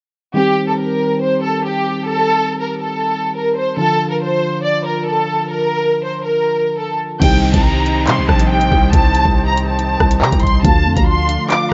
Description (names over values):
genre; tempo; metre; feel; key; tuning
hip hop, drill; 140 BPM; 4/4; half-time; unclear; A4 = 442 Hz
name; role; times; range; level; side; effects
soft electric-piano-like synth keys; accompaniment; 0.3-11.7 s; C3 to G4; -23 LUFS; equal; chorus, low-pass filter
warm studio violin section; melody; 0.4-11.7 s; G4 to D6; -19 LUFS; equal; low-pass filter
bright large flute ensemble; sustained chords; 7.2-11.7 s; D4 to G5; -28 LUFS; equal; none
growling 808-style bass; bass; 7.2-11.4 s; Bb1 to C3; -20 LUFS; equal; none
drill drum kit; drums; 7.2-11.6 s; crash cymbal, handclaps, hi-hat, kick drum, rim click; -18 LUFS; equal; none
downlifter; sound effects; 7.2-10.6 s; none; -32 LUFS; equal; none
room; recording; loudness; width
light reverb, digital ambience; nothing above 7.6 kHz; -16 LUFS; mono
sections
0.4-7.2 A section; 7.2-11.7 B section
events
none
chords
0.4 Cm; 3.8 Dm; 7.2 Cm; 10.6 Dm